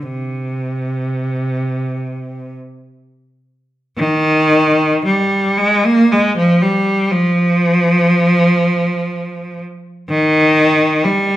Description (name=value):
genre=classical, free, expressive piece for unaccompanied cello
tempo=free time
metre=none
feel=none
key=C minor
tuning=A4 = 440 Hz
part: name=clear cello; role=solo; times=0.0-11.4 s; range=C3 to Bb3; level=-13 LUFS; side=equal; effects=none
room=wet recital hall reverb, RT60 1.3 s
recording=minimal, uncompressed stereo recording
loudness=-12 LUFS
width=side -14 dB against mid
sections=0.0-4.0 A section; 4.0-11.4 B section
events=none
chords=none